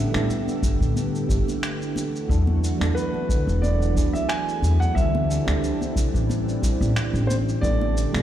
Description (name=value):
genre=sunset chillout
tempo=90 BPM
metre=4/4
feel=swing 55% on 16ths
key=A dorian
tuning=A4 = 440 Hz
part: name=warm grand piano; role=melody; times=0.0-8.2 s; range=B4 to G#5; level=-30 LUFS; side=right 2 dB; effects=tape echo, shimmer reverb
part: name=mellow FM electric piano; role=accompaniment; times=0.0-8.2 s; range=F#3 to A4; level=-29 LUFS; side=moving between left 5 dB and right 4 dB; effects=chorus, auto-pan, low-pass filter, tape echo, shimmer reverb
part: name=lush unison pad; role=sustained chords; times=0.0-8.2 s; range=D3 to G4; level=-29 LUFS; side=right 1 dB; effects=chorus, shimmer reverb
part: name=upright bass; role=bass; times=0.0-8.2 s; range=E1 to A2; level=-23 LUFS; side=equal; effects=none
part: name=electronic finger snaps and shaker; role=drums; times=0.1-8.2 s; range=none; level=-33 LUFS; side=equal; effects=none
part: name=congas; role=percussion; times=0.1-8.2 s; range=none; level=-34 LUFS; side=left 2 dB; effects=none
part: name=electronic kick drum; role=drums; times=0.6-7.8 s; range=none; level=-24 LUFS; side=equal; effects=overdrive
room=light reverb, small room reverb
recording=played on a big sound system in a bare room, large studio reverb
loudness=-20 LUFS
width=side -11 dB against mid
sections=0.0-8.2 A section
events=none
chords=0.0 A9sus4; 2.0 E9sus4; 5.0 D9sus4; 7.6 A9sus4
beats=0.29 0.96 1.63 | 2.29 2.96 3.63 4.29 | 4.96 5.63 6.29 6.96 | 7.63